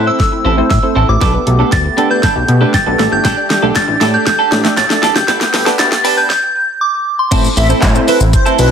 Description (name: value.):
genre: dance-pop.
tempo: 118 BPM.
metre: 4/4.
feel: straight.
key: G major.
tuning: A4 = 440 Hz.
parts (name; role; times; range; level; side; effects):
soft synth bell; melody; 0.0-7.4 s; C6 to A6; -15 LUFS; equal; chorus, tape echo.
wavetable chord stab; accompaniment; 0.0-8.5 s; A3 to C5; -19 LUFS; right 1 dB; sidechain pumping.
soft supersaw; sustained chords; 0.0-8.7 s; A3 to G4; -22 LUFS; equal; sidechain pumping.
twelve-string electric guitar; riff; 0.0-8.7 s; B3 to A4; -19 LUFS; right 7 dB; wide subtle chorus.
chorused synth bass; bass; 0.0-8.7 s; F#1 to B2; -15 LUFS; equal; sidechain pumping.
analog pluck; arpeggios; 0.1-6.2 s; A3 to G5; -23 LUFS; left 5 dB; chorus, sidechain pumping, tape echo.
pop drum kit; drums; 0.2-8.7 s; crash cymbal, handclaps, hi-hat, kick drum, shaker, snare drum; -15 LUFS; equal; none.
group handclap; percussion; 3.8-7.9 s; none; -26 LUFS; left 3 dB; none.
airy dreamy lead; melody; 7.6-8.7 s; B4 to E5; -16 LUFS; equal; chorus, sidechain pumping, tape echo.
room: light reverb.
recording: dense, heavily limited modern master, high-pass filter.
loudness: -10 LUFS.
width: side -7 dB against mid.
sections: 0.0-7.3 A section; 7.3-8.7 B section.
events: build-up 0.0-7.3; drum fill 0.0-6.3; filter sweep 0.0-7.3; stop 6.3-7.3; drop 7.3-8.7.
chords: 0.0 Am; 1.2 Gadd9/B; 3.0 Dsus4; 5.3 Gadd9; 7.3 Am.